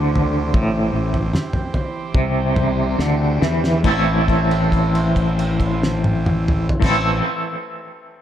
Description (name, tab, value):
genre	psychedelic rock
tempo	69-78 BPM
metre	4/4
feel	straight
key	A minor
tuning	A4 = 440 Hz
part	combo organ	sustained chords	0.0-7.2 s	E3 to C5	-30 LUFS	right 4 dB	phaser
part	twangy electric guitar	riff	0.0-7.2 s	A2 to A4	-20 LUFS	equal	tremolo, double-tracked left and right, analog delay
part	fuzz fingered electric bass	bass	0.0-7.2 s	A1 to E2	-21 LUFS	equal	overdrive
part	cloth-damped thuddy drum kit	drums	0.2-7.0 s	crash cymbal, kick drum, snare drum, toms	-22 LUFS	equal	none
room	light reverb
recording	echo-heavy mix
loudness	-16 LUFS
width	side -10 dB against mid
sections	0.0-3.8 A section; 3.8-7.3 B section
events	slowing down 0.0-3.8; drum fill 3.0-3.8; held note 3.8-6.8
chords	0.0 Am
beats	| 0.55 1.34 2.15 2.99 | 3.85 4.72 5.60 6.47